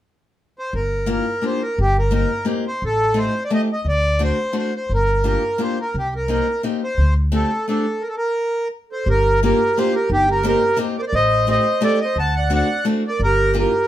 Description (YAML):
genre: musette waltz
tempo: 173 BPM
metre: 3/4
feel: straight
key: G minor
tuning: A4 = 438 Hz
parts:
  - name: accordion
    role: melody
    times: 0.6-13.9 s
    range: G4 to A5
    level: -20 LUFS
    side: equal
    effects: none
  - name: upright bass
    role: bass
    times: 0.7-13.6 s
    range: G1 to D2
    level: -20 LUFS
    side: equal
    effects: none
  - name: picked steel-string acoustic guitar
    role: accompaniment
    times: 1.1-13.7 s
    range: A3 to G4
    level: -22 LUFS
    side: left 2 dB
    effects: none
  - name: mellow clarinet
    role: second line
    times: 8.9-13.9 s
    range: Eb4 to F#5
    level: -23 LUFS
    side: right 4 dB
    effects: none
room: moderate studio reverb, RT60 0.5 s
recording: none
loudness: -17 LUFS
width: side -12 dB against mid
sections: 0.7-9.1 A section; 9.1-13.9 A section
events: stop 8.0-9.1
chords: 0.0 N.C.; 0.7 Gm7; 1.8 Cm7/G; 2.8 Am7b5; 3.8 D7; 4.9 Gm7; 5.9 Cm7; 7.0 D7sus4; 8.0 N.C.; 9.1 Gm7; 10.1 Cm7/G; 11.1 Am7b5; 12.2 D7; 13.2 Gm7